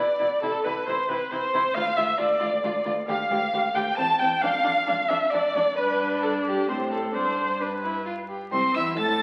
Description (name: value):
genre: quick classical-period movement for string quartet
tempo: 134 BPM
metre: 3/4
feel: straight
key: unclear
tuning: A4 = 440 Hz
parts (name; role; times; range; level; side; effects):
- rich violin; melody; 0.0-9.2 s; G4 to A6; -30 LUFS; equal; none
- rich violin; second line; 0.0-9.2 s; C4 to A5; -33 LUFS; equal; none
- rich viola; accompaniment; 0.0-9.2 s; C4 to A5; -28 LUFS; equal; none
- rich cello; bass; 0.0-9.2 s; C2 to C3; -38 LUFS; equal; none
room: wet recital hall reverb, RT60 1.3 s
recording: very old 78 rpm record, vinyl crackle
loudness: -25 LUFS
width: mono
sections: 0.0-8.5 A section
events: none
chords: 0.4 Cmaj7; 1.8 Dm; 3.1 G5/D; 4.0 C/E (rootless); 4.4 Dm/F; 5.8 G; 6.7 Am; 7.2 G; 8.5 C